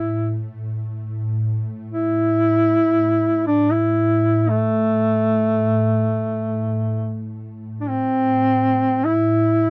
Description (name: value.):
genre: caucasian folk, Caucasian lament.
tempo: free time.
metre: none.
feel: none.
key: A minor.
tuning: A4 = 439 Hz.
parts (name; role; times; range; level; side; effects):
warm duduk; melody; 0.0-9.7 s; A3 to E4; -20 LUFS; equal; none.
ethereal airy pad; drone; 0.0-9.7 s; A2; -26 LUFS; equal; ensemble chorus, built-in reverb.
room: moderate booth ambience, RT60 0.2 s.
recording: dry, close 1970s-style studio recording.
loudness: -20 LUFS.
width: mono.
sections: 0.0-7.9 A section; 7.9-9.7 B section.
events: none.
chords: none.